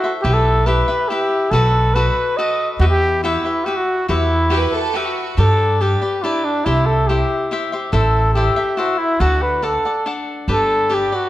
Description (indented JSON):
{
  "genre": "mexican folk, mariachi",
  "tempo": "141 BPM",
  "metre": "3/4",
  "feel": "straight",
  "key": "E minor, G major from 5.4 s",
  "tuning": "A4 = 440 Hz",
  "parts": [
    { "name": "mellow trumpet", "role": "melody", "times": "0.0-11.3 s", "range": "D4 to D#5", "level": "-18 LUFS", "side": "equal", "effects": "none" },
    { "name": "cavaquinho", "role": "accompaniment", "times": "0.0-11.3 s", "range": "D4 to F#5", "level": "-22 LUFS", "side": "left 3 dB", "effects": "none" },
    { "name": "upright bass", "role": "bass", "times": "0.2-11.0 s", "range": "G1 to G2", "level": "-18 LUFS", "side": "right 1 dB", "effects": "none" },
    { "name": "clear studio violin section", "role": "second line", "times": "4.5-5.4 s", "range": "F#4 to B4", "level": "-23 LUFS", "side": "right 4 dB", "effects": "none" }
  ],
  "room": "moderate recital hall reverb, RT60 1.5 s",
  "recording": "none",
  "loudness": "-15 LUFS",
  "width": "side -14 dB against mid",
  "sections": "0.0-5.4 A section; 5.4-11.3 B section",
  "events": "none",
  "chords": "0.2 Em/B; 1.5 B7; 2.8 Emadd9; 5.4 G; 6.7 C; 7.9 Am; 9.2 D; 10.5 G"
}